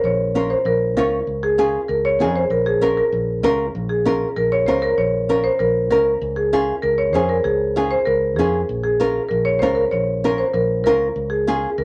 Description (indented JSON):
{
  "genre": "latin, cumbia",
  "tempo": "194 BPM",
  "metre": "4/4",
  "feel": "straight",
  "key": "Bb minor",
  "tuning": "A4 = 440 Hz",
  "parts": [
    { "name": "marimba with medium hard mallets", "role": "melody", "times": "0.0-11.8 s", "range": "Ab4 to Db5", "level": "-21 LUFS", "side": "equal", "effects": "none" },
    { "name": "fingered electric bass", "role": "bass", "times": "0.0-11.8 s", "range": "Bb1 to F2", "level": "-28 LUFS", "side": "equal", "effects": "none" },
    { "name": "nylon-string guitar", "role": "accompaniment", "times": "0.4-11.7 s", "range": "Db4 to Db5", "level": "-23 LUFS", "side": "equal", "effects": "none" }
  ],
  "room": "moderate club reverb, RT60 0.6 s",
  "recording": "none",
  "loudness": "-19 LUFS",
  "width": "mono",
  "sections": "0.0-3.7 A section; 3.7-11.8 A section",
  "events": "none",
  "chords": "0.0 Bbm; 1.3 Db; 2.5 Bbm; 6.2 Db; 8.7 Bbm; 11.2 Db",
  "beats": "| 0.04 0.34 0.66 0.96 | 1.27 1.58 1.89 2.20 | 2.51 2.82 3.13 3.44 | 3.75 4.05 4.36 4.67 | 4.98 5.29 5.60 5.91 | 6.22 6.53 6.83 7.14 | 7.45 7.76 8.07 8.38 | 8.69 9.00 9.30 9.61 | 9.92 10.23 10.54 10.85 | 11.16 11.47 11.78"
}